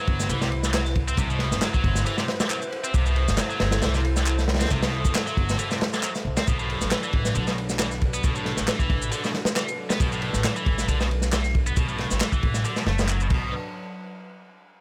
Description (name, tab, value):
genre	breakbeat, breaks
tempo	136 BPM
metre	4/4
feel	swing 55% on 16ths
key	B phrygian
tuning	A4 = 440 Hz
part	phased analog pad	sustained chords	0.0-13.5 s	F#3 to C5	-37 LUFS	equal	phaser, chorus, sidechain pumping
part	scooped high-gain guitar	riff	0.0-13.5 s	A2 to C4	-32 LUFS	equal	distortion, overdrive, low-pass filter, digital delay
part	upright bass	bass	0.1-13.5 s	F#1 to C2	-29 LUFS	equal	tube saturation, low-pass filter
part	crunchy breakbeat drum kit	drums	0.1-13.4 s	crash cymbal, kick drum, ride cymbal, snare drum	-28 LUFS	equal	none
part	electronic shaker and handclaps	drums	0.2-13.3 s	none	-34 LUFS	equal	none
room	light reverb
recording	none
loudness	-24 LUFS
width	mono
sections	0.0-6.5 A section; 6.5-13.5 B section; 13.5-14.8 C section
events	drop 0.0-6.5; band accent 6.0; filter sweep on upright bass 6.5-13.5; filter sweep on analog synth pad 6.5-13.5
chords	0.0 Cmaj7; 6.5 Bm7; 13.5 N.C.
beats	0.29 0.74 | 1.18 1.62 2.06 2.50 | 2.94 3.38 3.83 4.27 | 4.71 5.15 5.59 6.03 | 6.47 6.91 7.35 7.79 | 8.24 8.68 9.12 9.56 | 10.00 10.44 10.88 11.32 | 11.77 12.21 12.65 13.09